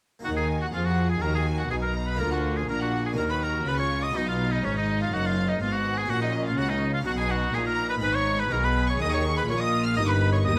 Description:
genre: classical, baroque-style concerto movement with solo episodes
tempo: 123 BPM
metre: 4/4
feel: straight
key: Eb minor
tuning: A4 = 440 Hz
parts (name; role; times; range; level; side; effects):
- clear oboe; melody; 0.2-10.6 s; Db4 to F5; -31 LUFS; equal; none
- rich studio violin section; melody; 0.2-10.6 s; Db5 to F6; -37 LUFS; equal; none
- clear chamber violin section; second line; 0.2-10.6 s; Db5 to F6; -39 LUFS; equal; none
- harpsichord; accompaniment; 0.2-10.6 s; Eb2 to Bb4; -37 LUFS; equal; none
- rich studio viola section; accompaniment; 0.2-10.6 s; B3 to Ab4; -38 LUFS; equal; none
- clear chamber double bass section; bass; 0.2-10.6 s; F#1 to F2; -32 LUFS; equal; none
- warm chamber cello section; bass; 0.2-10.6 s; Eb2 to F3; -32 LUFS; equal; none
room: light reverb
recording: close, detailed microphones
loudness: -26 LUFS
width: mono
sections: 0.2-10.6 A section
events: none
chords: 0.2 Ebm; 2.2 Bb/D; 3.2 Ebm; 4.1 B; 6.1 Gb/Bb; 7.1 B; 8.0 Abm; 10.0 Eb/G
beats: | 0.25 0.74 1.22 1.71 | 2.20 2.69 3.17 3.66 | 4.15 4.63 5.12 5.61 | 6.09 6.58 7.06 7.55 | 8.03 8.52 9.00 9.49 | 9.97 10.46

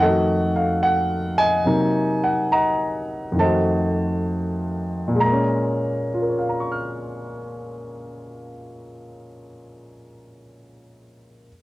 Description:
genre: solo jazz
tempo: 64-74 BPM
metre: 4/4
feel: swing 67% on 8ths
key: Bb minor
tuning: A4 = 445 Hz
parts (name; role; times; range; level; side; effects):
- dark concert grand piano; solo; 0.0-11.5 s; F2 to F6; -20 LUFS; equal; cassette tape
room: moderate studio ambience, RT60 0.5 s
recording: home recording on cassette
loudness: -19 LUFS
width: side -17 dB against mid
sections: 0.0-5.2 A section; 5.2-9.0 B section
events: slowing down 0.0-5.2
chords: 0.0 F7b9; 1.6 Cm7b5; 3.4 F7b9; 5.2 Bbm7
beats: 0.81 | 1.65 2.50 3.38 4.27 | 5.20 6.14 7.08 8.03

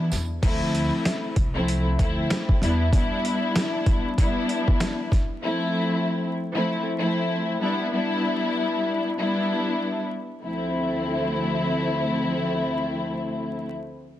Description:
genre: hip hop, boom-bap hip-hop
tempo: 96 BPM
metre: 4/4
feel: swing 59% on 16ths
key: D dorian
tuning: A4 = 440 Hz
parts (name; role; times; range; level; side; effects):
- dark studio string section; accompaniment; 0.0-13.7 s; D2 to E4; -24 LUFS; left 1 dB; high-pass filter, low-pass filter
- upright bass; bass; 0.0-2.9 s; C2 to E2; -26 LUFS; equal; none
- boom bap sampler-style drum kit; drums; 0.1-5.3 s; crash cymbal, hi-hat, kick drum, snare drum; -23 LUFS; equal; overdrive
room: light reverb, studio ambience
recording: dense, heavily limited modern master, vinyl crackle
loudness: -22 LUFS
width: side -13 dB against mid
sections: 0.4-10.4 A section; 10.4-12.9 B section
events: break 0.0-0.4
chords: 0.4 Dm9; 2.6 Em7; 5.4 Fmaj7; 7.6 Em7; 10.4 Dm9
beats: | 0.43 1.05 1.68 2.30 | 2.93 3.55 4.18 4.80 | 5.43 6.05 6.68 7.30 | 7.93 8.55 9.18 9.80 | 10.43 11.05 11.68 12.30

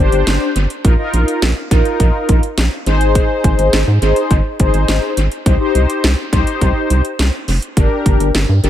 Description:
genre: synth-pop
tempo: 104 BPM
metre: 4/4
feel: straight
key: unclear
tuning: A4 = 441 Hz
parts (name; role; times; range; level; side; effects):
- mellow synth brass; accompaniment; 0.0-8.7 s; D4 to C5; -17 LUFS; left 2 dB; chorus, phaser
- rubbery square bass; bass; 0.0-8.7 s; F1 to Ab2; -14 LUFS; equal; none
- house drum kit; drums; 0.1-8.7 s; hi-hat, kick drum, snare drum; -16 LUFS; equal; dub echo
room: light reverb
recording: echo-heavy mix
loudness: -12 LUFS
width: side -11 dB against mid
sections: 0.0-8.7 A section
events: none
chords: 0.0 G5; 0.8 Bbsus4; 2.9 Ab; 5.5 Cm; 7.8 Gm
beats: 0.27 | 0.85 1.42 2.00 2.58 | 3.15 3.73 4.31 4.88 | 5.46 6.04 6.62 7.19 | 7.77 8.35

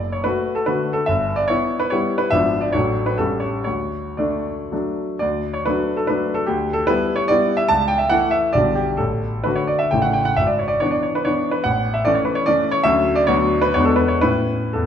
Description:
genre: classical, romantic triple-time dance for piano with dotted rhythms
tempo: 107-157 BPM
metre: 3/4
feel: rubato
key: D major, A major from 10.4 s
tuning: A4 = 442 Hz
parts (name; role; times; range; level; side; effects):
- clear grand piano; solo; 0.0-14.9 s; F#1 to A5; -17 LUFS; equal; none
room: wet recital hall reverb, RT60 1.6 s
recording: minimal, uncompressed stereo recording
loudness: -17 LUFS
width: side -8 dB against mid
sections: 0.0-5.2 A section; 5.2-14.9 A section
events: none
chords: 0.0 D/F#; 1.1 Em/G; 2.3 G#dim7; 2.7 D/A; 3.2 A7; 3.7 D; 6.5 Em7/D; 7.7 A/C#; 8.6 G/B; 9.0 D/A; 9.9 A; 10.4 E7/G#; 11.7 A; 12.9 Dmaj7; 13.3 Bm/D; 13.7 E7; 14.2 A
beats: 0.24 0.67 | 1.07 1.49 1.92 | 2.33 2.74 3.19 | 3.65 4.19 4.72 | 5.21 5.65 6.08 | 6.49 6.89 7.30 | 7.70 8.12 8.55 | 8.99 9.46 9.93 | 10.38 10.82 11.26 | 11.65 12.06 12.47 | 12.86 13.28 13.75 | 14.23 14.73

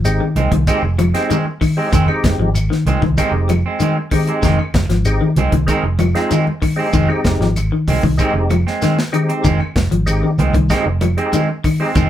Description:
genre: afrobeat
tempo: 96 BPM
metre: 4/4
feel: straight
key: F minor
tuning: A4 = 440 Hz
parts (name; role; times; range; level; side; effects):
- percussive tonewheel organ; accompaniment; 0.0-11.9 s; Ab3 to Bb4; -21 LUFS; left 1 dB; slow rotary speaker, chorus vibrato
- semi-hollow electric guitar; arpeggios; 0.0-12.1 s; Eb3 to F3; -18 LUFS; left 3 dB; none
- fingered electric bass; bass; 0.0-12.1 s; F1 to C2; -18 LUFS; right 1 dB; none
- electric guitar at the edge of break-up; stabs; 0.1-12.1 s; Eb3 to C4; -21 LUFS; right 4 dB; none
- tight funk drum kit; drums; 0.1-12.1 s; hi-hat, kick drum, snare drum; -20 LUFS; equal; none
- claves; percussion; 0.1-11.8 s; none; -32 LUFS; left 3 dB; none
- congas; percussion; 0.1-12.1 s; none; -23 LUFS; right 1 dB; none
- shekere; percussion; 0.1-12.1 s; none; -26 LUFS; left 1 dB; none
room: moderate studio reverb, RT60 0.5 s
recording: band playing live in one room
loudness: -14 LUFS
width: side -11 dB against mid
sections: 0.0-12.1 A section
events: none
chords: 0.0 Fm7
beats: 0.05 0.67 1.30 | 1.93 2.55 3.18 3.80 | 4.43 5.06 5.68 6.31 | 6.94 7.56 8.19 8.82 | 9.45 10.07 10.70 11.33 | 11.96

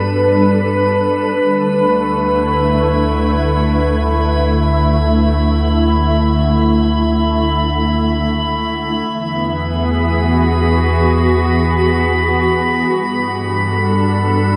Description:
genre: ambient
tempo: free time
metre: none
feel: none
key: unclear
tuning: A4 = 443 Hz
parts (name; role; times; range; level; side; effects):
- glassy FM pad; sustained chords; 0.0-14.6 s; D3 to E5; -17 LUFS; equal; ensemble chorus, built-in reverb, shimmer reverb
- warm sub bass; bass; 0.0-14.6 s; D2 to G2; -21 LUFS; equal; none
- drifting glass-harmonics texture; texture; 0.0-14.6 s; B5; -23 LUFS; equal; chorus, built-in reverb, shimmer reverb
room: wet huge ambient reverb, RT60 8.1 s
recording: none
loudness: -15 LUFS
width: mono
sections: 0.0-14.6 A section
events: none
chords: 0.0 G; 1.5 Dsus2; 9.1 E; 12.9 G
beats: free time

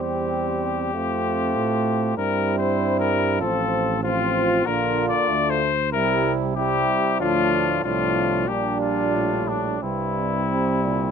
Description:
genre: classical, brass quintet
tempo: 95 BPM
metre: 4/4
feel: rubato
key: unclear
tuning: A4 = 441 Hz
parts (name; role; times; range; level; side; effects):
- mellow trumpet; melody; 0.0-11.1 s; D4 to D5; -24 LUFS; left 8 dB; none
- mellow flugelhorn; second line; 0.0-11.1 s; C4 to F4; -28 LUFS; right 10 dB; none
- warm French horn; accompaniment; 0.0-11.1 s; F3 to C4; -28 LUFS; left 3 dB; none
- warm euphonium; accompaniment; 0.0-11.1 s; G2 to A3; -28 LUFS; right 3 dB; none
- mellow tuba; bass; 0.0-11.1 s; A1 to A2; -28 LUFS; right 4 dB; none
room: light reverb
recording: close, detailed microphones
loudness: -20 LUFS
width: side -7 dB against mid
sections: 0.0-11.1 A section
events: none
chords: 0.0 C/E; 0.9 F; 2.2 C/G; 3.4 F/A; 4.7 Bb; 5.9 C; 7.2 Dm; 8.5 Gm7/Bb; 9.8 C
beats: 0.32 0.94 1.56 | 2.17 2.79 3.41 4.04 | 4.66 5.29 5.93 6.57 | 7.21 7.84 8.49 9.14 | 9.82 10.50

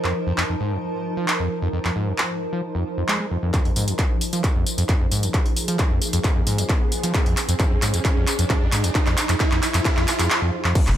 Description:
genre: driving peak-time techno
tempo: 133 BPM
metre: 4/4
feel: straight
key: F minor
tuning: A4 = 440 Hz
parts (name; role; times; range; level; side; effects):
- overdriven acid bass; riff; 0.0-10.9 s; F2 to Ab3; -24 LUFS; equal; distortion, wide subtle chorus, sidechain pumping, tape echo
- techno drum kit; drums; 0.0-11.0 s; crash cymbal, handclaps, hi-hat, tambourine; -24 LUFS; equal; overdrive, studio ambience, sidechain pumping on hats, sidechain pumping on perc, sidechain pumping on cymbals
- granular cloud pad; texture; 0.0-11.0 s; F3 to C5; -29 LUFS; equal; built-in reverb, sidechain pumping
- electronic kick drum; drums; 3.5-10.8 s; none; -21 LUFS; equal; distortion, overdrive, studio ambience
- riser and impact; sound effects; 5.3-11.0 s; none; -30 LUFS; right 2 dB; none
- saturated sub bass; bass; 10.9-11.0 s; F1; -20 LUFS; equal; overdrive, sidechain pumping, low-pass filter
room: light reverb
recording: none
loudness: -19 LUFS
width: side -11 dB against mid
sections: 0.0-3.5 A section; 3.5-10.8 B section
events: build-up 3.5-10.8; drum fill 3.5-10.3, 10.3-10.8; riser 5.3-10.3; impact 10.8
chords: 0.0 F5; 3.5 Fm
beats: 0.38 0.83 1.28 | 1.73 2.18 2.63 3.08 | 3.54 3.99 4.44 4.89 | 5.34 5.79 6.24 6.69 | 7.14 7.60 8.05 8.50 | 8.95 9.40 9.85 10.30 | 10.75

